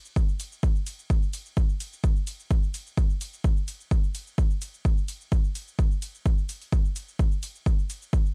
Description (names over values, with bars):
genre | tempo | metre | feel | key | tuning
techno | 128 BPM | 4/4 | swing 53% on 16ths | none | none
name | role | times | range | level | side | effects
punchy analog drum machine | drums | 0.1-8.3 s | hi-hat, ride cymbal, shaker | -44 LUFS | equal | none
electronic kick drum | drums | 0.2-8.2 s | none | -25 LUFS | equal | none
room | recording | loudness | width
little or no reverb | dry, gritty hardware recording, transformer saturation | -27 LUFS | mono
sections
0.0-8.3 A section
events
none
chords
none